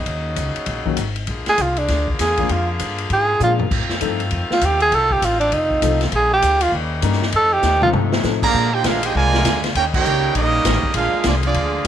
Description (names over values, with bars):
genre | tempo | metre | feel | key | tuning
jazz, big band swing | 199 BPM | 4/4 | swing 62% on 8ths | Bb major from 8.5 s | A4 = 440 Hz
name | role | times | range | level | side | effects
clear saxophone section | sustained chords | 0.0-11.9 s | C3 to Ab4 | -28 LUFS | left 1 dB | none
upright bass | bass | 0.0-11.9 s | F1 to Bb2 | -22 LUFS | left 1 dB | none
swinging big-band drum kit | drums | 0.1-11.9 s | crash cymbal, hi-hat, kick drum, ride cymbal, snare drum, toms | -23 LUFS | left 1 dB | none
warm concert grand piano | accompaniment | 0.9-8.4 s | Eb3 to Bb4 | -24 LUFS | left 15 dB | none
breathy tenor saxophone | melody | 1.5-7.9 s | D4 to A4 | -17 LUFS | right 2 dB | none
bright trumpet section | melody | 8.4-11.9 s | Bb3 to Bb5 | -20 LUFS | right 3 dB | tape echo
bright trombone section | second line | 8.4-11.9 s | D3 to G4 | -24 LUFS | right 12 dB | none
room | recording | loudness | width
light reverb, studio ambience | 1960s-style stereo with parts hard left and right | -16 LUFS | side -10 dB against mid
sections
0.0-8.5 A section; 8.5-11.9 B section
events
tenor saxophone solo 0.0-8.5; drum fill 3.4-3.7, 7.6-8.2; band accent 9.9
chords
0.1 Ebm7; 1.3 Bb7; 3.7 F7; 6.1 Bb7; 6.7 Eb7; 7.3 F7; 8.5 Bb7; 9.7 Eb7; 10.9 Bb7